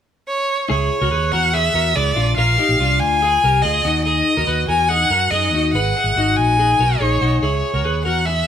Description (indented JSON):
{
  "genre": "jangly indie pop",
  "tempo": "143 BPM",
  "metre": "4/4",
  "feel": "straight",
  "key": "C# dorian",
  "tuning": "A4 = 440 Hz",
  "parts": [
    { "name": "rich violin", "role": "melody", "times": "0.3-8.5 s", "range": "C#5 to G#5", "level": "-17 LUFS", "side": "left 1 dB", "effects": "digital delay" },
    { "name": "twelve-string electric guitar", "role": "arpeggios", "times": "0.7-8.5 s", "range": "D4 to B4", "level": "-22 LUFS", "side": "left 2 dB", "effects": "none" },
    { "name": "fingered electric bass", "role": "bass", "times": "0.7-8.4 s", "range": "G#1 to F#2", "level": "-20 LUFS", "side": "right 1 dB", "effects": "none" }
  ],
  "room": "moderate studio ambience, RT60 0.5 s",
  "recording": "band playing live in one room",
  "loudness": "-15 LUFS",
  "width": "side -9 dB against mid",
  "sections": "0.7-8.5 A section",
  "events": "none",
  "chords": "0.0 N.C.; 0.7 C#m; 2.2 A#7; 3.9 D#m; 5.7 G#madd9; 7.4 C#m",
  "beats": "0.28 | 0.70 1.12 1.54 1.96 | 2.38 2.80 3.22 3.65 | 4.07 4.49 4.91 5.33 | 5.75 6.17 6.59 7.01 | 7.43 7.85 8.27"
}